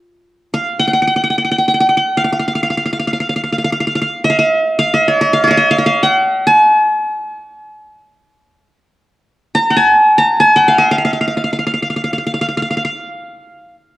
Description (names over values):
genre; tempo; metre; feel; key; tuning
Arabic maqam ensemble; free time; none; none; F maqam huzam; A4 = 440 Hz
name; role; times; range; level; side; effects
qanun; solo; 0.5-13.7 s; D5-50c to Bb5-40c; -11 LUFS; equal; cassette tape
room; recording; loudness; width
wet spring reverb, RT60 1.8 s, studio reverb; home recording on cassette; -11 LUFS; side -16 dB against mid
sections
0.0-14.0 A section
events
none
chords
none